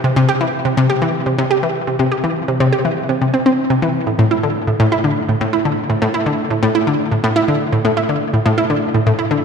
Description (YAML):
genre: ambient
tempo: 123 BPM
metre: 4/4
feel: straight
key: unclear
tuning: A4 = 439 Hz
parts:
  - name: analog pluck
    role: solo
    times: 0.0-9.4 s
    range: A2 to G4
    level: -14 LUFS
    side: equal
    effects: chorus, tape echo
room: wet concert hall reverb, RT60 2.5 s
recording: dark, warm production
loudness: -14 LUFS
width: side -6 dB against mid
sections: 0.0-9.4 A section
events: none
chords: none